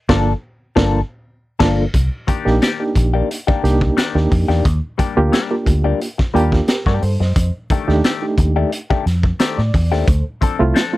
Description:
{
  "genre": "funk",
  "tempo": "88 BPM",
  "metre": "4/4",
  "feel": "straight",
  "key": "unclear",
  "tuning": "A4 = 440 Hz",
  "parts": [
    { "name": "clean electric guitar", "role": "accompaniment", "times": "0.1-11.0 s", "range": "Eb3 to A4", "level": "-21 LUFS", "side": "left 8 dB", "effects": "wah" },
    { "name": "barky reed electric piano", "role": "stabs", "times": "0.1-11.0 s", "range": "A3 to Eb5", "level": "-19 LUFS", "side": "right 2 dB", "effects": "overdrive, fast tremolo" },
    { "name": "vintage muted fingered electric bass", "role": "bass", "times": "0.1-10.7 s", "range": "G1 to A2", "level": "-17 LUFS", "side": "equal", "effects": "none" },
    { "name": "raw garage drum kit", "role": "drums", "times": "0.1-10.9 s", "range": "crash cymbal, hi-hat, kick drum, snare drum", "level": "-18 LUFS", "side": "equal", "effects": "none" }
  ],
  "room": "little or no reverb",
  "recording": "dry, close 1970s-style studio recording",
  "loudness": "-14 LUFS",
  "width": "side -17 dB against mid",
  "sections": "0.0-1.9 A section; 1.9-11.0 B section",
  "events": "band accent 0.0-1.9",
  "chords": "0.0 Gm9; 1.9 Cm9; 4.7 Ebmaj7; 7.4 F13; 10.1 Dm7"
}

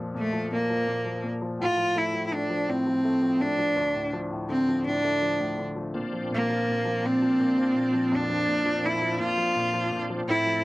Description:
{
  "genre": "pop",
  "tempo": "55 BPM (dotted quarters)",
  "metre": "6/8",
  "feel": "straight",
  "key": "unclear",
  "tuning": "A4 = 439 Hz",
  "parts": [
    { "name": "clear upright piano", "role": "accompaniment", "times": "0.0-10.6 s", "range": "D2 to A3", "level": "-31 LUFS", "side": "left 2 dB", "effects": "cassette tape" },
    { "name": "bright cello", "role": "melody", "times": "0.2-10.6 s", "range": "A3 to F4", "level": "-24 LUFS", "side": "equal", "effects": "cassette tape" },
    { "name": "bright tonewheel organ", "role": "sustained chords", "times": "5.9-10.6 s", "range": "A2 to A4", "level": "-33 LUFS", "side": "equal", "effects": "overdrive, chorus vibrato, slow rotary speaker, cassette tape" }
  ],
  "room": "light reverb",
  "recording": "home recording on cassette",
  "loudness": "-23 LUFS",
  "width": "side -19 dB against mid",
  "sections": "0.0-10.6 A section",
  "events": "none",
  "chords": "0.0 Bb5; 1.6 F/A; 3.8 Dm; 6.0 Bbadd9"
}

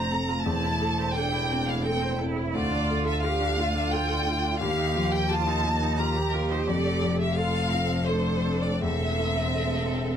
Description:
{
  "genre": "neoclassical piano and strings",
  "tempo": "86 BPM",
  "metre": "3/4",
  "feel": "rubato",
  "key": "unclear",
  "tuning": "A4 = 441 Hz",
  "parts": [
    { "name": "rich chamber violin section", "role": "melody", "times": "0.0-10.2 s", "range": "Bb4 to Bb5", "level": "-29 LUFS", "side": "left 1 dB", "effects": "none" },
    { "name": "warm cello", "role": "second line", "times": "0.0-10.2 s", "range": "C4 to G4", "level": "-32 LUFS", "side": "right 5 dB", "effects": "none" },
    { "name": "dark grand piano", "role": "accompaniment", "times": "0.0-10.2 s", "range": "D2 to A4", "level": "-30 LUFS", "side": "left 2 dB", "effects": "none" },
    { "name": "rich viola", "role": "accompaniment", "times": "0.0-10.2 s", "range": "A3 to C5", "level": "-35 LUFS", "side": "right 4 dB", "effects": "none" },
    { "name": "dark analog pad", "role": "sustained chords", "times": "0.0-10.2 s", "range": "A3 to Eb5", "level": "-37 LUFS", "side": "right 2 dB", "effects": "chorus" },
    { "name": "rich double bass", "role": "bass", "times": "0.0-10.2 s", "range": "E1 to Eb2", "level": "-30 LUFS", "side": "equal", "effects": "none" }
  ],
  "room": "light reverb",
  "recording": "close, detailed microphones",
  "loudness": "-24 LUFS",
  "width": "side -8 dB against mid",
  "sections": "0.0-10.2 A section",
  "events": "none",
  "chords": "0.5 Am/E; 2.6 Dm; 4.6 Ebadd9; 6.7 F; 8.8 Am/E"
}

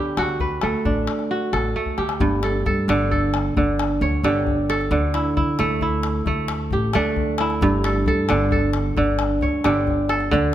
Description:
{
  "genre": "west african traditional, West African string and xylophone music",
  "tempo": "89 BPM (dotted quarters)",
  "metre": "12/8",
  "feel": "straight",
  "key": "G lydian",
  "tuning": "A4 = 440 Hz",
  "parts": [
    { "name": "kora", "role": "arpeggios", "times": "0.0-10.5 s", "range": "G2 to C#5", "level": "-20 LUFS", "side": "right 2 dB", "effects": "none" },
    { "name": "upright bass", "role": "bass", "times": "0.2-10.5 s", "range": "G1 to D3", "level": "-24 LUFS", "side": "equal", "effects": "none" },
    { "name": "calabash", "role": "percussion", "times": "0.2-10.4 s", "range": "none", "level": "-28 LUFS", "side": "left 4 dB", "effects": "none" }
  ],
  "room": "moderate recital hall reverb, RT60 1.6 s",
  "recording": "none",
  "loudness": "-18 LUFS",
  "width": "side -12 dB against mid",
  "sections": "0.0-2.2 A section; 2.2-10.5 B section",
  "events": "drum fill 1.8-2.2",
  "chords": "0.0 D; 2.2 G5; 4.9 D5; 7.6 G5"
}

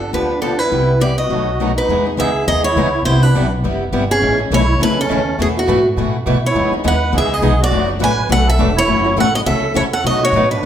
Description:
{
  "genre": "acoustic string swing (jazz manouche)",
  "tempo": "206 BPM",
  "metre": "4/4",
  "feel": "swing 57% on 8ths",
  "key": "E major",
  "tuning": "A4 = 440 Hz",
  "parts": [
    { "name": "picked steel-string acoustic guitar", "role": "melody", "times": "0.0-10.7 s", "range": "F#4 to G#5", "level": "-17 LUFS", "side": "equal", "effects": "none" },
    { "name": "musette accordion", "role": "second line", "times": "0.0-10.7 s", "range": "A3 to B4", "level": "-22 LUFS", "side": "right 4 dB", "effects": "none" },
    { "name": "picked steel-string acoustic guitar", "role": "accompaniment", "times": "0.1-10.7 s", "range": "B2 to G#4", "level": "-21 LUFS", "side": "left 7 dB", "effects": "none" },
    { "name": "picked swing-style acoustic guitar", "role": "accompaniment", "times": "0.1-10.7 s", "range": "B2 to B4", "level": "-23 LUFS", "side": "right 5 dB", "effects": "none" },
    { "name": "upright bass", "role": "bass", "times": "0.1-10.7 s", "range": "E1 to B2", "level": "-19 LUFS", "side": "equal", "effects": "none" }
  ],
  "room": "wet recital hall reverb, RT60 1.5 s",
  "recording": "recorded in a church or concert hall",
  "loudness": "-13 LUFS",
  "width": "side -10 dB against mid",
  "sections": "0.0-1.9 A section; 1.9-10.7 B section",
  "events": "none",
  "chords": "0.0 G7; 0.7 Cmaj7; 1.3 B7; 1.9 Emaj7; 3.1 Cmaj9#11; 4.2 Amaj7; 5.4 B7sus4; 6.6 Emaj7; 7.7 D69/F#; 8.9 F#m7; 10.0 B9"
}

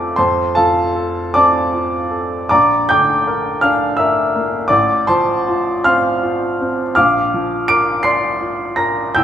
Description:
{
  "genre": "classical, romantic character piece for solo piano",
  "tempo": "50-56 BPM (dotted quarters)",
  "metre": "6/8",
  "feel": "rubato",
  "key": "unclear",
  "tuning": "A4 = 440 Hz",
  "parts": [
    { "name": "warm upright piano", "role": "solo", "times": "0.0-9.2 s", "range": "A1 to D7", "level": "-13 LUFS", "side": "equal", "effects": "none" }
  ],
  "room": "wet recital hall reverb, RT60 1.6 s",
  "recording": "recorded in a church or concert hall",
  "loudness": "-13 LUFS",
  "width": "side -10 dB against mid",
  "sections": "0.0-9.2 A section",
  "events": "none",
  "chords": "0.2 Dm7/F; 2.5 Gm/Bb; 4.7 F/A; 7.0 Bb"
}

